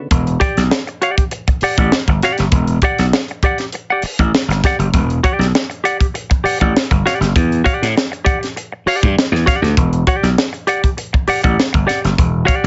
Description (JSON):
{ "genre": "funk", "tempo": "99 BPM", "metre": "4/4", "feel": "straight", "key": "E minor", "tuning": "A4 = 441 Hz", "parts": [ { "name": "gritty slap bass", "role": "bass", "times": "0.1-12.7 s", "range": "E1 to A2", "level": "-18 LUFS", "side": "equal", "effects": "overdrive" }, { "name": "crisp fusion drum kit", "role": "drums", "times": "0.1-12.7 s", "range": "hi-hat, kick drum, snare drum", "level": "-19 LUFS", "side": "equal", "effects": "none" }, { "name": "semi-hollow electric guitar", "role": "accompaniment", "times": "0.4-12.7 s", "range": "G4 to G5", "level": "-19 LUFS", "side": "equal", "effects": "none" } ], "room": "light reverb", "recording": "nothing above 7.8 kHz", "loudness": "-16 LUFS", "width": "mono", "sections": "0.1-12.7 A section", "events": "none", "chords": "0.1 Em9" }